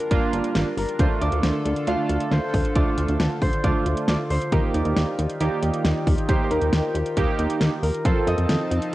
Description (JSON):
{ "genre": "synth-pop", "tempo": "136 BPM", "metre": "4/4", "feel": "straight", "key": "unclear", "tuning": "A4 = 440 Hz", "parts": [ { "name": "Celtic harp", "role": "melody", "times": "0.0-8.9 s", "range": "Bb4 to F5", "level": "-29 LUFS", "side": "left 2 dB", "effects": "cassette tape, analog delay" }, { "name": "chorused pulse-width pad", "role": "sustained chords", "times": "0.0-8.9 s", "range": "D3 to A5", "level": "-30 LUFS", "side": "left 1 dB", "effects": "cassette tape" }, { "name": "pop drum kit", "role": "drums", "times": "0.0-8.9 s", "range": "hi-hat, kick drum, snare drum", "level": "-24 LUFS", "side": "equal", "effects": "cassette tape" }, { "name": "warm analog keys", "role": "accompaniment", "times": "0.1-8.6 s", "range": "A3 to A4", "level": "-27 LUFS", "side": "right 5 dB", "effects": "chorus, cassette tape" }, { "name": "chorused synth bass", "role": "bass", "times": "0.1-8.8 s", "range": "G1 to F2", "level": "-24 LUFS", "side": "equal", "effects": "tube saturation" } ], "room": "light reverb", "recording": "home recording on cassette", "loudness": "-20 LUFS", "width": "side -16 dB against mid", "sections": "0.0-8.9 A section", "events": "none", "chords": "0.0 Gm7; 1.0 Dm; 4.5 Ebadd9; 8.1 F7" }